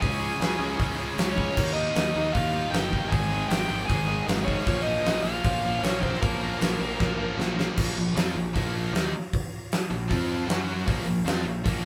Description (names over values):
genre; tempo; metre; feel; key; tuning
hard rock; 155 BPM; 4/4; straight; Bb dorian; A4 = 440 Hz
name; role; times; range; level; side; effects
biting lead guitar; melody; 0.0-7.3 s; Bb4 to Ab5; -32 LUFS; equal; overdrive
biting lead guitar; second line; 0.0-7.3 s; Bb3 to Ab4; -39 LUFS; equal; none
bright tonewheel organ; sustained chords; 0.0-11.8 s; Ab3 to Db6; -45 LUFS; equal; none
overdriven electric guitar; riff; 0.0-11.8 s; Ab2 to Gb4; -36 LUFS; equal; none
sludgy distorted guitar; riff; 0.0-11.8 s; Ab2 to Gb4; -38 LUFS; equal; none
tight distorted guitar; riff; 0.0-11.8 s; Ab2 to Gb4; -36 LUFS; equal; distortion
fuzz fingered electric bass; bass; 0.0-11.8 s; G1 to Gb2; -35 LUFS; equal; overdrive
huge arena drum kit; drums; 0.0-11.7 s; crash cymbal, hi-hat, kick drum, snare drum; -30 LUFS; equal; none
room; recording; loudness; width
light reverb; band playing live in one room; -26 LUFS; mono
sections
0.0-7.8 A section; 7.8-11.8 B section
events
drum fill 7.0-7.8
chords
0.0 Db; 1.6 Eb; 3.1 Ab; 4.7 Bbm; 10.1 F5; 10.5 Gb5; 10.9 Bbm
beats
| 0.02 0.41 0.79 1.18 | 1.57 1.96 2.34 2.73 | 3.12 3.51 3.90 4.28 | 4.67 5.06 5.45 5.83 | 6.22 6.61 7.00 7.38 | 7.77 8.16 8.55 8.93 | 9.32 9.71 10.10 10.48 | 10.87 11.26 11.65